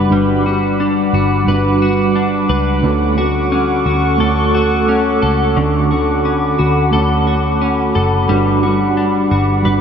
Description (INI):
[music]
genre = dream pop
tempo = 88 BPM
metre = 4/4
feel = straight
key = G lydian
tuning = A4 = 440 Hz
[part]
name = mellow electric guitar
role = accompaniment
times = 0.0-9.8 s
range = D3 to B4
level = -18 LUFS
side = right 4 dB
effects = tremolo, wide subtle chorus
[part]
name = warbly tape-like pad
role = sustained chords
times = 0.0-9.8 s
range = G3 to D6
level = -18 LUFS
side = equal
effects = chorus, built-in reverb
[part]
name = clean electric guitar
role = arpeggios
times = 0.0-9.8 s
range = D3 to B4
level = -18 LUFS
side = left 4 dB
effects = analog chorus, analog delay
[part]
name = vintage muted picked electric bass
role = bass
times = 0.0-9.8 s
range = F#1 to D2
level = -18 LUFS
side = equal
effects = none
[sound]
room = wet cathedral reverb, RT60 6.6 s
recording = dreamy mix soaked in reverb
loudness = -12 LUFS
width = side -7 dB against mid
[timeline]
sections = 0.0-9.8 A section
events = none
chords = 0.0 Gmaj7; 2.8 Dmaj7; 8.3 Gmaj7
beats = | 0.12 0.80 1.48 2.16 | 2.84 3.52 4.21 4.89 | 5.57 6.25 6.93 7.62 | 8.30 8.98 9.66